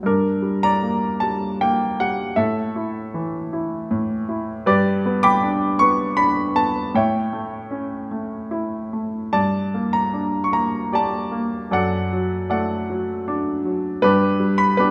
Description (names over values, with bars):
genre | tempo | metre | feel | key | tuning
classical, lyrical solo piano | 77 BPM | 3/4 | rubato | unclear | A4 = 438 Hz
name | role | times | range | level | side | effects
clear grand piano | solo | 0.0-14.9 s | F#2 to D6 | -21 LUFS | equal | none
room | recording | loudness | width
moderate concert hall reverb, RT60 1.9 s | none | -21 LUFS | mono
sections
0.0-14.9 A section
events
none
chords
0.0 Gm; 2.4 A5; 4.7 G; 6.9 A; 9.3 Gmadd9; 11.7 D/F#; 14.0 G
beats
| 0.04 0.82 1.60 | 2.37 3.14 3.90 | 4.66 5.41 6.17 | 6.94 7.72 8.52 | 9.33 10.13 10.92 | 11.71 12.50 13.27 | 14.03 14.78